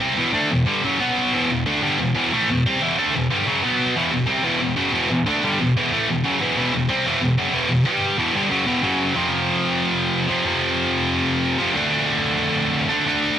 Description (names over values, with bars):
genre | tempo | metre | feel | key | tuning
metal | 184 BPM | 4/4 | straight | E minor | A4 = 442 Hz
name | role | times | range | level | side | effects
scooped high-gain guitar | solo | 0.0-13.4 s | E2 to D4 | -18 LUFS | equal | distortion, cassette tape, analog delay
room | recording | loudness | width
little or no reverb | home recording on cassette | -18 LUFS | side -10 dB against mid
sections
0.0-4.0 A section; 4.0-9.2 B section; 9.2-13.4 C section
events
none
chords
0.0 Em; 1.0 B5; 1.3 Em; 3.6 B5; 4.0 Em; 7.9 G5; 8.2 Em; 8.8 F#5; 9.2 F5; 11.8 D5